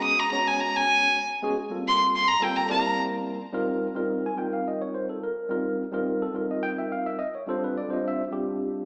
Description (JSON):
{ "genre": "jazz", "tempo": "213 BPM (eighths)", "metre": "7/8", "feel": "straight", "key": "unclear", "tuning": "A4 = 440 Hz", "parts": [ { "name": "warm violin", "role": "melody", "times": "0.0-3.0 s", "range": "G5 to Eb6", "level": "-24 LUFS", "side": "equal", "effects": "slapback echo" }, { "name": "bright tine electric piano", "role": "accompaniment", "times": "0.0-8.9 s", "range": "G3 to Ab5", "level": "-30 LUFS", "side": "equal", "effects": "slapback echo" } ], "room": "moderate lush hall reverb, RT60 2.8 s", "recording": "live gig heard through the venue's PA, club reverb, small speaker sound", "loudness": "-26 LUFS", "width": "mono", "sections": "0.0-3.5 A section; 3.5-8.9 A section", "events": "violin solo 0.0-3.5", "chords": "0.0 Abm11; 1.6 Gm11; 2.7 C7; 3.5 F9sus4; 7.5 G9sus4", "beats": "0.17 0.45 0.73 1.01 1.29 | 1.57 1.85 2.13 2.41 2.69 2.97 3.25 | 3.54 3.82 4.10 4.38 4.66 4.94 5.22 | 5.50 5.79 6.07 6.35 6.63 6.91 7.19 | 7.48 7.76 8.04 8.32 8.60" }